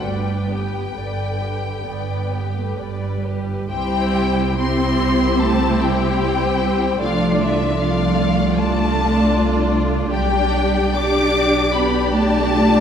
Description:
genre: classical, slow romantic movement for string orchestra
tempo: 62-78 BPM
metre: 4/4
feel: rubato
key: G major, C major from 3.7 s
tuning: A4 = 441 Hz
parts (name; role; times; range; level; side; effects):
- rich studio violin section; melody; 0.0-12.8 s; E5 to D6; -24 LUFS; left 4 dB; none
- rich studio violin section; second line; 0.0-12.8 s; F4 to D5; -24 LUFS; left 3 dB; none
- rich studio viola section; accompaniment; 0.0-12.8 s; D3 to G4; -23 LUFS; right 1 dB; none
- rich studio double bass section; bass; 0.0-12.8 s; G1 to C2; -24 LUFS; right 2 dB; none
- warm studio cello section; bass; 0.0-12.8 s; G2 to D4; -22 LUFS; right 1 dB; none
room: wet scoring stage reverb, RT60 2.0 s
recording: heard from further back in the room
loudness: -16 LUFS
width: side -8 dB against mid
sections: 0.0-3.7 A section; 3.7-12.8 B section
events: none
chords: 0.0 G; 3.7 C; 7.0 Dm7/C; 10.1 G/B

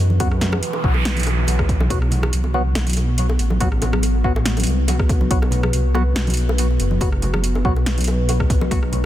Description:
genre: deep dubstep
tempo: 141 BPM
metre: 4/4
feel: swing 53% on 16ths, half-time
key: unclear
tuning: A4 = 438 Hz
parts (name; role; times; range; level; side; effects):
- overtone-sweeping drone; sustained chords; 0.0-9.1 s; B2 to B3; -27 LUFS; left 1 dB; chorus, built-in reverb, vintage 12-bit sampler grit
- dark detuned saw bass; bass; 0.0-9.1 s; F#1 to F#2; -19 LUFS; equal; none
- congas and bongos; percussion; 0.1-9.0 s; none; -28 LUFS; right 1 dB; dub echo
- percussive organ stab; stabs; 0.2-8.8 s; F#3 to F#4; -28 LUFS; left 2 dB; chorus, phaser, dub echo
- deep house drum kit; drums; 0.2-9.0 s; hi-hat, rim click, snare drum; -26 LUFS; equal; overdrive, studio reverb
- electronic kick drum; drums; 0.2-8.8 s; none; -20 LUFS; equal; overdrive, studio reverb
- noise sweep; sound effects; 0.6-1.9 s; none; -30 LUFS; right 3 dB; none
room: little or no reverb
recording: dense, heavily limited modern master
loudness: -16 LUFS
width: side -13 dB against mid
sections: 0.0-9.1 A section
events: noise sweep 0.6-1.9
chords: 0.0 B5

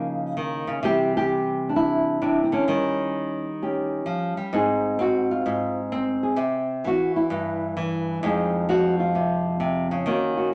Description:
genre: solo jazz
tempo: 130 BPM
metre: 4/4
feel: swing 67% on 8ths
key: Ab major from 4.5 s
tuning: A4 = 440 Hz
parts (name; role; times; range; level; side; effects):
- nylon-string guitar; solo; 0.0-10.5 s; F2 to Ab4; -24 LUFS; equal; none
room: wet studio reverb, RT60 1.0 s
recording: none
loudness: -24 LUFS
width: mono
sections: 0.0-4.5 A section; 4.5-10.5 B section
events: nylon-string guitar solo 4.5-10.5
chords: 0.0 Db69; 0.8 Cadd9; 2.7 Eb7; 4.5 Ab6; 6.4 C; 8.2 Fm7

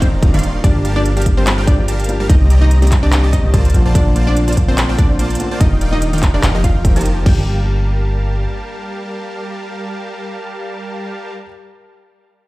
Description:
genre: future bass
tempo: 145 BPM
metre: 4/4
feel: swing 55% on 16ths, half-time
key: G minor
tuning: A4 = 440 Hz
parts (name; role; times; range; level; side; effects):
- wide unison pluck; melody; 0.0-11.4 s; C4 to G5; -23 LUFS; equal; sidechain pumping, tape echo
- felt-muted upright piano; accompaniment; 0.0-11.5 s; D3 to G4; -25 LUFS; equal; sidechain pumping
- supersaw stab; riff; 0.0-11.3 s; Eb3 to C6; -23 LUFS; equal; sidechain pumping, tape echo
- warm 808-style bass; bass; 0.0-8.5 s; Eb1 to C2; -15 LUFS; equal; sidechain pumping
- electronic kick drum; drums; 0.0-7.4 s; none; -14 LUFS; equal; overdrive
- trap drum kit; drums; 0.0-7.4 s; crash cymbal, handclaps, hi-hat; -23 LUFS; equal; none
room: digital ambience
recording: played on a big sound system in a bare room, large studio reverb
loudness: -12 LUFS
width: side -20 dB against mid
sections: 0.0-7.3 A section; 7.3-10.6 B section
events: drop 0.0-7.3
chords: 0.0 Ebmaj9; 0.6 Gm7; 2.3 Cm7; 3.7 Bbmaj9; 5.6 Ebmaj9; 6.4 F7sus4; 7.3 Gm7

